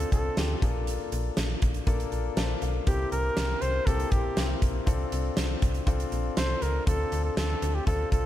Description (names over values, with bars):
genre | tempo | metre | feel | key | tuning
1980s-style pop | 120 BPM | 4/4 | straight | D minor | A4 = 440 Hz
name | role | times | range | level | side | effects
clear flugelhorn | melody | 0.0-8.3 s | G4 to C5 | -32 LUFS | equal | ping-pong delay
clear concert grand piano | accompaniment | 0.0-8.3 s | Bb3 to A5 | -34 LUFS | left 5 dB | none
slap-like FM bass | bass | 0.0-8.3 s | Bb1 to D2 | -30 LUFS | equal | none
huge arena drum kit | drums | 0.0-8.2 s | hi-hat, kick drum, snare drum | -29 LUFS | equal | none
room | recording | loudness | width
light reverb, small room ambience | none | -25 LUFS | side -13 dB against mid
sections
0.0-8.3 A section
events
none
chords
0.0 Dm7; 0.6 Bbmaj7; 2.9 C7; 4.9 F6/C; 6.9 Dm7